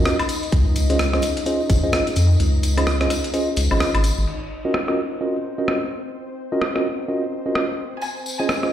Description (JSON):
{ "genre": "UK garage, two-step garage", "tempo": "128 BPM", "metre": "4/4", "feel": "swing 60% on 16ths", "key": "Eb dorian", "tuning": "A4 = 440 Hz", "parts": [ { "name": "ethereal airy pad", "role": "sustained chords", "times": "0.0-8.7 s", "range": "C4 to Eb5", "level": "-29 LUFS", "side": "left 1 dB", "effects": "ensemble chorus, built-in reverb, sidechain pumping" }, { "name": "mellow tine electric piano", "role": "stabs", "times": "0.0-8.7 s", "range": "Db4 to Eb5", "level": "-23 LUFS", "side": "right 1 dB", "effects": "medium stereo tremolo, digital delay" }, { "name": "saturated sub bass", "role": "bass", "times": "0.0-4.3 s", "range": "Ab1 to F2", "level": "-18 LUFS", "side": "equal", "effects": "none" }, { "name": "breakbeat sampler-style drum kit", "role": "drums", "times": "0.1-8.7 s", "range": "crash cymbal, hi-hat, rim click, woodblock", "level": "-25 LUFS", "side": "equal", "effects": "low-pass filter on hats, low-pass filter on snare, low-pass filter on perc, low-pass filter on cymbals, low-pass filter on room" }, { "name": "tambourine", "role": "percussion", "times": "0.1-4.3, 8.0-8.7 s", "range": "none", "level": "-33 LUFS", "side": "left 3 dB", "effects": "none" }, { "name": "electronic kick drum", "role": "drums", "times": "0.5-1.8 s", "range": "none", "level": "-18 LUFS", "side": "equal", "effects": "none" }, { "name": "bright studio violin section", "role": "melody", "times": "8.0-8.6 s", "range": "Ab5", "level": "-29 LUFS", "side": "left 1 dB", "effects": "none" } ], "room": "moderate lush hall reverb, RT60 1.6 s", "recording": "played on a big sound system in a bare room, large studio reverb", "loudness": "-18 LUFS", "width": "side -10 dB against mid", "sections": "0.0-4.3 A section; 4.3-8.7 B section", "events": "kick drops out 2.4-4.3", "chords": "0.0 Ebm9; 0.5 Dbmaj9; 4.3 Ebm9; 8.0 Dbmaj9", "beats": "0.06 | 0.52 0.99 1.46 1.93 | 2.40 2.87 3.34 3.81 | 4.27 4.74 5.21 5.68 | 6.15 6.62 7.09 7.55 | 8.02 8.49" }